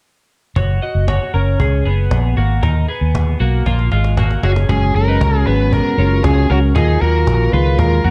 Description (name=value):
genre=jangly indie pop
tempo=116 BPM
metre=4/4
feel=straight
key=F# major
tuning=A4 = 440 Hz
part: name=twelve-string electric guitar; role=arpeggios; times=0.6-8.1 s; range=G#3 to D#5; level=-24 LUFS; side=equal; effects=lush chorus
part: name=vintage muted fingered electric bass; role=bass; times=0.6-8.1 s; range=F#1 to E#2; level=-17 LUFS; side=equal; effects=none
part: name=cajon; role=drums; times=0.6-7.9 s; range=none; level=-24 LUFS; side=equal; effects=vintage 12-bit sampler grit
part: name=biting lead guitar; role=melody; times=4.4-8.1 s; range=F#4 to B4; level=-22 LUFS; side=equal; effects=overdrive
part: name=fingerpicked plugged-in steel-string acoustic guitar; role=accompaniment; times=4.7-8.1 s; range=D#3 to F#4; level=-22 LUFS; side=equal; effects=none
room=light reverb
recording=dark, warm production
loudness=-15 LUFS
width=mono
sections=0.6-4.7 A section; 4.7-8.1 B section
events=drum fill 3.7-4.7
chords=0.6 F#sus2; 2.6 D#madd9; 4.4 F#sus2; 6.8 D#madd9